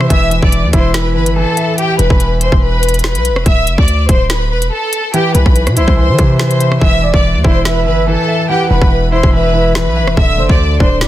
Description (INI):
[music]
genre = hip hop, drill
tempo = 143 BPM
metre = 4/4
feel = half-time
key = E minor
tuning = A4 = 440 Hz
[part]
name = warm studio violin section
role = melody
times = 0.0-11.1 s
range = G4 to E6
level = -16 LUFS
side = left 1 dB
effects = tape echo
[part]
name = dark concert grand piano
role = accompaniment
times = 0.0-11.1 s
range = D3 to E5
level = -17 LUFS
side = equal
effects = none
[part]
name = hard-hitting 808-style bass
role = bass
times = 0.0-11.1 s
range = D1 to E3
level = -14 LUFS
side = equal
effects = none
[part]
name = drill drum kit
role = drums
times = 0.0-11.1 s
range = hi-hat, kick drum, rim click, snare drum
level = -13 LUFS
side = equal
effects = soft clipping on snare
[part]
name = breathy flute-like synth lead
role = second line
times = 7.0-11.1 s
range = C5 to F#5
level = -20 LUFS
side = right 4 dB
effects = chorus, tremolo, tape echo
[sound]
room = digital ambience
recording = dense, heavily limited modern master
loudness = -10 LUFS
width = side -14 dB against mid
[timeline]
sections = 0.0-11.1 A section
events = hi-hats muted 6.8-11.1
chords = 0.1 E5; 3.5 D5; 5.1 C; 6.8 E5; 10.2 D5